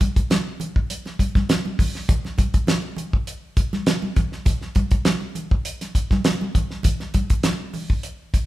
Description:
funk; 101 BPM; 4/4; straight
damped 70s drum kit; drums; 0.0-8.5 s; hi-hat, kick drum, snare drum; -20 LUFS; equal
congas; percussion; 0.0-7.9 s; -29 LUFS; right 1 dB
moderate large studio reverb, RT60 1.1 s; band playing live in one room; -20 LUFS; side -16 dB against mid
0.0-8.5 A section

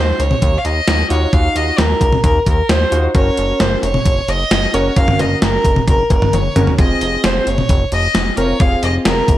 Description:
synth-pop; 132 BPM; 4/4; straight; A4 = 440 Hz
rich fiddle; melody; 0.0-9.4 s; Bb4 to F5; -18 LUFS; equal; slapback echo
warm analog keys; accompaniment; 0.0-9.3 s; C4 to Bb4; -21 LUFS; left 1 dB; chorus
chorused synth bass; bass; 0.0-9.4 s; F1 to Eb2; -18 LUFS; equal
gated 80s digital drum machine; drums; 0.2-9.4 s; cowbell, hi-hat, kick drum, snare drum, toms; -15 LUFS; equal; gated reverb, gated reverb snare
light reverb; -12 LUFS; side -14 dB against mid
0.0-9.4 A section
drum fill 6.3-6.8
0.0 Ebmadd9; 3.1 Gb; 6.8 Fm

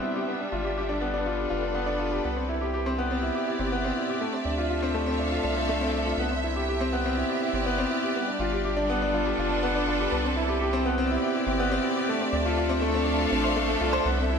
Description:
piano and strings electronica; 122 BPM; 4/4; straight; C major; A4 = 441 Hz
clear symphonic string section; sustained chords; 0.0-14.4 s; C3 to F5; -30 LUFS; right 1 dB; low-pass filter
bright baby grand piano; riff; 0.0-14.4 s; A3 to C5; -26 LUFS; left 1 dB; ping-pong delay
round analog bass; bass; 0.5-14.4 s; F1 to D2; -31 LUFS; right 1 dB
moderate concert hall reverb, RT60 1.9 s, small room ambience; -24 LUFS; side -6 dB against mid
0.0-14.1 A section
build-up 0.0-14.1; filter sweep on string section 0.0-14.1
0.3 G7; 2.2 Cmaj7; 4.2 Dm7; 6.2 Cmaj7; 8.2 G7; 10.1 Cmaj7; 12.1 Dm7

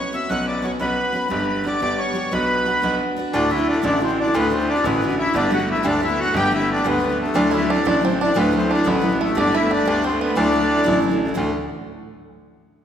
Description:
celtic folk, Celtic jig; 119 BPM (dotted quarters); 6/8; straight; B minor, D mixolydian from 3.3 s; A4 = 441 Hz
accordion; melody; 0.0-11.0 s; A3 to F#5; -21 LUFS; left 1 dB
picked steel-string acoustic guitar; accompaniment; 0.0-11.5 s; D2 to B4; -23 LUFS; right 2 dB
bright grand piano; bass; 0.3-11.5 s; G1 to D2; -23 LUFS; left 1 dB
bluegrass banjo; second line; 7.4-11.0 s; A3 to E4; -26 LUFS; right 4 dB
wet concert hall reverb, RT60 2.1 s; recorded in a church or concert hall; -17 LUFS; side -9 dB against mid
0.0-3.3 A section; 3.3-11.4 B section; 11.4-12.4 C section
0.0 Bsus2; 1.3 G; 2.3 Bm; 3.3 Dadd9; 5.3 Gadd9; 7.4 Dadd9; 9.4 Gadd9; 10.4 Dadd9

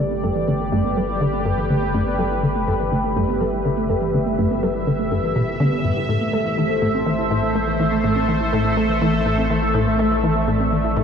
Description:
ambient, sequencer-driven space music; 123 BPM; 4/4; straight; A4 = 440 Hz
sweeping resonant pad; sustained chords; 0.0-11.0 s; G3 to E5; -22 LUFS; equal; chorus
warbly dusty pluck; arpeggios; 0.0-11.0 s; A2 to A4; -24 LUFS; right 2 dB; chorus, auto-pan, ping-pong delay
resonant blip pluck; riff; 0.0-11.0 s; G2 to A3; -22 LUFS; left 2 dB; chorus, ping-pong delay
round analog bass; bass; 0.0-11.0 s; G1 to A1; -28 LUFS; equal
wind-like tuned noise texture; texture; 2.2-11.0 s; E5; -33 LUFS; right 2 dB; built-in reverb
wet cathedral reverb, RT60 6.2 s; in a vast, echoing space; -18 LUFS; side -7 dB against mid
0.0-11.0 A section
fade-in on synth texture 0.0-11.0; filter sweep on synth arpeggio sound 0.0-11.0
0.0 G; 6.1 Am

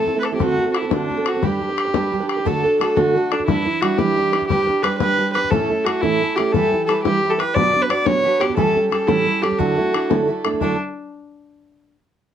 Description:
celtic folk, Celtic jig; 118 BPM (dotted quarters); 6/8; straight; D major; A4 = 440 Hz
warm viola; melody; 0.0-10.8 s; D4 to D5; -20 LUFS; equal
picked steel-string acoustic guitar; accompaniment; 0.0-10.8 s; A2 to B4; -21 LUFS; right 4 dB
bodhran; percussion; 0.1-10.8 s; -23 LUFS; left 8 dB
light reverb; -16 LUFS; side -9 dB against mid
0.0-2.5 A section; 2.5-10.6 B section; 10.6-11.6 C section
0.4 D7; 1.4 G; 2.5 D; 3.5 Em7; 4.5 G; 5.5 A; 6.5 Em; 7.6 Bm; 8.6 A7; 9.6 Dadd9

